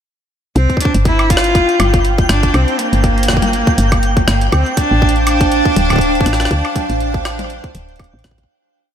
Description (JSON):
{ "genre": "IDM", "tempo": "121 BPM", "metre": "4/4", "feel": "swing 56% on 16ths", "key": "D minor", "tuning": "A4 = 438 Hz", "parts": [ { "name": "rich cello", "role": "melody", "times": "0.6-8.0 s", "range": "Bb3 to F4", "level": "-17 LUFS", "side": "equal", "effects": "analog delay" }, { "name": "woody FM bass", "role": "bass", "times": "0.6-8.5 s", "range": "D1 to D2", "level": "-16 LUFS", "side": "equal", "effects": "tube saturation" }, { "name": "jungle sampler-style drum kit", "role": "drums", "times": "0.6-8.5 s", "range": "hi-hat, rim click, toms, woodblock", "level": "-21 LUFS", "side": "left 1 dB", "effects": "overdrive, ping-pong delay" }, { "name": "twinkling granular texture", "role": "texture", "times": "1.2-8.5 s", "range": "G5", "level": "-24 LUFS", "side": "right 2 dB", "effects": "built-in reverb" }, { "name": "electronic kick drum", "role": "drums", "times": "0.7-8.5 s", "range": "none", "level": "-16 LUFS", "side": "equal", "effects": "overdrive" }, { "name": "icy glass pad", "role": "sustained chords", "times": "4.9-8.5 s", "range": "D4 to F5", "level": "-21 LUFS", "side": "right 1 dB", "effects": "chorus, built-in reverb" } ], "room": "moderate cathedral reverb, RT60 5.8 s", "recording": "dreamy mix soaked in reverb", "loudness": "-11 LUFS", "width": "side -9 dB against mid", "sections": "0.6-8.5 groove", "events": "fade-out 5.8-8.5", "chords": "0.6 C7(no3) (rootless); 4.5 Dm7" }